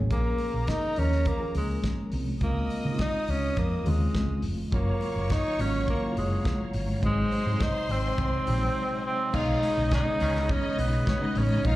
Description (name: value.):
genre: disco.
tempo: 104 BPM.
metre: 4/4.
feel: straight.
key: unclear.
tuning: A4 = 440 Hz.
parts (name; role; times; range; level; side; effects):
reed electric piano; accompaniment; 0.0-11.8 s; C3 to Bb4; -34 LUFS; left 3 dB; fast tremolo.
hollow-body short-scale fingered electric bass; bass; 0.0-11.8 s; F1 to Db3; -27 LUFS; equal; none.
breathy tenor saxophone; melody; 0.1-11.8 s; Ab3 to Eb4; -29 LUFS; right 1 dB; slapback echo.
clear studio string section; second line; 0.1-11.8 s; Db4 to Eb6; -38 LUFS; left 1 dB; slapback echo.
damped 70s drum kit; drums; 0.1-11.8 s; crash cymbal, hi-hat, kick drum, snare drum; -32 LUFS; equal; none.
congas; percussion; 0.4-11.6 s; none; -38 LUFS; left 2 dB; none.
bright tonewheel organ; sustained chords; 4.7-11.8 s; Gb3 to Cb6; -38 LUFS; equal; chorus vibrato, fast rotary speaker.
warm horn section; stabs; 9.6-10.4 s; Eb3 to Ab4; -37 LUFS; equal; slapback echo.
room: small room ambience.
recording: live gig heard through the venue's PA, club reverb.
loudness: -24 LUFS.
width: side -16 dB against mid.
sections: 0.1-9.3 A section; 9.3-11.8 B section.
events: break 8.8-9.3.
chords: 0.1 Bbm7; 2.4 Dbmaj7; 4.7 Gbmaj7; 7.0 Ab7; 9.3 Cb69.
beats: | 0.11 0.69 1.26 1.84 | 2.42 2.99 3.57 4.15 | 4.72 5.30 5.88 6.45 | 7.03 7.61 8.19 8.76 | 9.34 9.91 10.49 11.07 | 11.65.